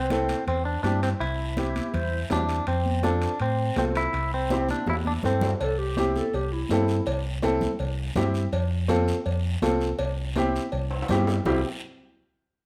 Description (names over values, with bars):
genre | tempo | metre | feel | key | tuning
latin, cumbia | 164 BPM | 4/4 | straight | C major | A4 = 440 Hz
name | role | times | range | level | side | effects
clean electric guitar | melody | 0.0-5.5 s | C4 to E4 | -30 LUFS | equal | spring reverb
fingered electric bass | bass | 0.0-11.6 s | C2 to A2 | -30 LUFS | equal | none
clear upright piano | accompaniment | 0.1-11.6 s | C4 to A4 | -30 LUFS | equal | none
congas | percussion | 0.1-11.5 s | none | -35 LUFS | equal | none
guiro | percussion | 0.1-11.5 s | none | -45 LUFS | equal | none
timbales and cowbell | percussion | 0.1-11.5 s | none | -37 LUFS | equal | none
breathy clarinet | second line | 1.6-2.2, 5.6-7.3, 11.5-11.6 s | E4 to C5 | -33 LUFS | equal | none
room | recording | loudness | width
moderate large studio reverb, RT60 0.9 s | none | -26 LUFS | mono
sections
0.0-5.6 A section; 5.6-11.5 B section; 11.5-12.7 C section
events
drum fill 4.5-5.6, 10.9-11.5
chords
0.0 C; 2.7 F; 4.1 C; 8.5 F; 10.0 C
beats
0.10 0.47 0.84 | 1.20 1.57 1.94 2.30 | 2.67 3.04 3.40 3.77 | 4.14 4.51 4.87 5.24 | 5.61 5.97 6.34 6.70 | 7.07 7.44 7.80 8.17 | 8.53 8.90 9.27 9.63 | 10.00 10.36 10.73 11.09 | 11.46